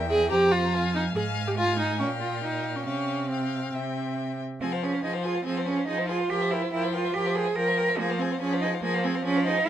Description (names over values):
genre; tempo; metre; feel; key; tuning
quick classical-period movement for string quartet; 142 BPM; 4/4; straight; F minor; A4 = 445 Hz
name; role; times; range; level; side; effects
warm violin; melody; 0.0-9.7 s; E5 to Bb5; -36 LUFS; left 12 dB; none
rich violin; second line; 0.0-9.7 s; Ab4 to F5; -35 LUFS; left 5 dB; none
clear cello; bass; 0.0-9.7 s; E2 to Bb4; -28 LUFS; right 3 dB; none
rich viola; accompaniment; 0.1-9.7 s; F3 to Ab4; -28 LUFS; right 1 dB; none
room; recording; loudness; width
light reverb; close, detailed microphones; -24 LUFS; side -10 dB against mid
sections
0.0-4.6 A section; 4.6-9.7 B section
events
none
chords
0.3 Fm; 1.2 Fm/Ab; 2.0 Bbm6; 2.9 Csus4; 3.7 C; 4.6 Fm; 6.3 C7/F; 8.0 Fm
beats
0.31 0.73 | 1.15 1.57 2.00 2.43 | 2.86 3.30 3.74 4.17 | 4.61 5.03 5.46 5.88 | 6.30 6.72 7.14 7.57 | 7.99 8.41 8.83 9.25 | 9.67